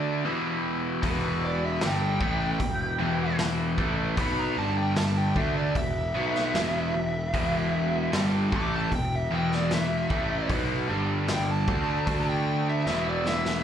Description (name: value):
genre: blues rock power trio and southern rock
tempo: 76 BPM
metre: 4/4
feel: straight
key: E minor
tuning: A4 = 441 Hz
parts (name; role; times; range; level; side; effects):
- overdriven tonewheel organ; sustained chords; 0.0-13.6 s; G3 to G5; -41 LUFS; right 4 dB; none
- biting overdriven guitar; riff; 0.0-13.6 s; E2 to D4; -28 LUFS; equal; slapback echo
- fuzz picked electric bass; bass; 1.0-13.6 s; E1 to D2; -30 LUFS; equal; overdrive
- raw garage drum kit; drums; 1.0-13.6 s; hi-hat, kick drum, snare drum; -31 LUFS; equal; none
- fuzz lead guitar; melody; 1.1-13.6 s; B4 to D6; -31 LUFS; equal; distortion, slapback echo
room: light reverb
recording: live gig heard through the venue's PA, club ambience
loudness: -24 LUFS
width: side -9 dB against mid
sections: 0.0-13.6 A section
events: drum fill 12.9-13.6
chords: 0.3 Em; 4.6 G5; 5.4 Em; 10.9 G5; 11.7 D5; 12.9 Em